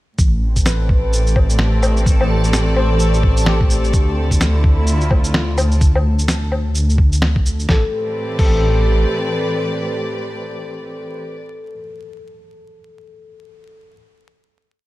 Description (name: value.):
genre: future garage.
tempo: 128 BPM.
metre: 4/4.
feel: swing 60% on 16ths.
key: A minor.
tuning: A4 = 439 Hz.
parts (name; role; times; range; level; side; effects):
warm chamber string section; sustained chords; 0.2-11.4 s; A2 to D5; -23 LUFS; right 1 dB; sidechain pumping.
dark detuned saw bass; bass; 0.2-9.1 s; A1 to D2; -16 LUFS; equal; tube saturation, sidechain pumping.
electronic kick drum; drums; 0.2-8.6 s; none; -15 LUFS; equal; studio reverb.
lo-fi sampler-style drum kit; drums; 0.2-8.6 s; crash cymbal, shaker, snare drum, woodblock; -22 LUFS; equal; studio reverb.
backwards swelling texture; texture; 1.0-5.8 s; A3 to A4; -30 LUFS; equal; built-in reverb.
overdriven tine electric piano; accompaniment; 0.7-4.1, 7.7-14.0 s; G4 to C5; -26 LUFS; left 2 dB; lush chorus, sidechain pumping, tape echo.
room: light reverb, digital ambience.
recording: vinyl crackle.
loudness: -14 LUFS.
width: side -18 dB against mid.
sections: 0.2-7.7 groove; 7.7-11.4 final chord.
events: none.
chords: 0.2 Am11; 3.9 Dm7; 7.7 Am11.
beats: | 0.19 0.66 1.13 1.59 | 2.06 2.53 3.00 3.47 | 3.94 4.41 4.88 5.34 | 5.81 6.28 6.75 7.22 | 7.69 8.16 8.63 9.10 | 9.56 10.03 10.50 10.97.